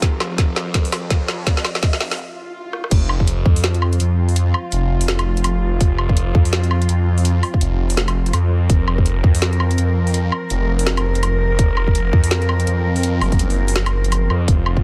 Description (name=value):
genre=half-time drum and bass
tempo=166 BPM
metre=4/4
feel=swing 59% on 16ths, half-time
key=unclear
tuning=A4 = 441 Hz
part: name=warm studio cello section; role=sustained chords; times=0.0-14.8 s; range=F3 to Bb4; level=-28 LUFS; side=equal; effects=sidechain pumping
part: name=phased detuned saw bass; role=bass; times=0.0-14.8 s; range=F1 to F2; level=-20 LUFS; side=equal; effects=phaser, high-pass filter
part: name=drum and bass drum kit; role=drums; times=0.0-14.7 s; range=crash cymbal, hi-hat, rim click, snare drum, woodblock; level=-25 LUFS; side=equal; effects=high-pass filter on hats, high-pass filter on snare, high-pass filter on perc, high-pass filter on cymbals, high-pass filter on room
part: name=electronic kick drum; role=drums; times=0.0-3.5, 5.8-9.3, 11.6-14.8 s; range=none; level=-18 LUFS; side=equal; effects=none
part: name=riser and swell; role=sound effects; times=0.1-2.9 s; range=none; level=-36 LUFS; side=equal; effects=none
room=little or no reverb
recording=none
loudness=-18 LUFS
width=mono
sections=0.0-2.9 A section; 2.9-14.8 B section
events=build-up 0.0-2.9; drum fill 0.0-2.2, 2.7; break 2.2-2.9; swell 2.2-2.9; drop 2.9-14.8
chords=0.0 F5